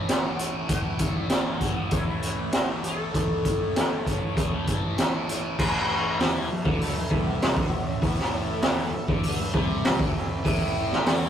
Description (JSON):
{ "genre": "psychedelic rock", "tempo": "98 BPM", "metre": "4/4", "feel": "straight", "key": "A major", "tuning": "A4 = 439 Hz", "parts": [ { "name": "hand-pumped harmonium", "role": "sustained chords", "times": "0.0-11.3 s", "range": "E3 to E5", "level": "-36 LUFS", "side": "right 4 dB", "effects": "none" }, { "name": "thick fuzz guitar", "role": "riff", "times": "0.0-11.3 s", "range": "A2 to A3", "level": "-32 LUFS", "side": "left 2 dB", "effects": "distortion, phaser" }, { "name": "fuzz picked electric bass", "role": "bass", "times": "0.0-11.3 s", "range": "A1 to E2", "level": "-34 LUFS", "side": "equal", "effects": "overdrive" }, { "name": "sitar", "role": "melody", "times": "0.1-11.3 s", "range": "F#3 to A4", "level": "-34 LUFS", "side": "left 1 dB", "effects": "none" }, { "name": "raw garage drum kit", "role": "drums", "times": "0.1-11.2 s", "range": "crash cymbal, hi-hat, kick drum, snare drum", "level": "-24 LUFS", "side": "equal", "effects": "none" } ], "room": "light reverb", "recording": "rough rehearsal-room recording, tube saturation", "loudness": "-23 LUFS", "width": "side -9 dB against mid", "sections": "0.0-5.6 A section; 5.6-11.3 B section", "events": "none", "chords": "0.0 A; 5.6 A5" }